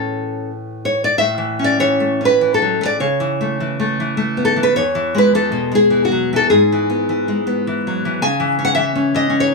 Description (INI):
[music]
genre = romantic piece for solo classical guitar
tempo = 84-112 BPM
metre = 3/4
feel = rubato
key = A major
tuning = A4 = 440 Hz
[part]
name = nylon-string guitar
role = solo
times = 0.0-9.5 s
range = E2 to G#5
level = -15 LUFS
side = left 1 dB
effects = none
[sound]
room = moderate studio reverb, RT60 0.6 s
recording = none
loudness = -14 LUFS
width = side -2 dB against mid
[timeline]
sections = 0.0-1.2 A section; 1.2-9.5 B section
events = none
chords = 0.0 A; 3.0 A/C#; 4.8 E; 6.5 E/G#; 8.2 C#m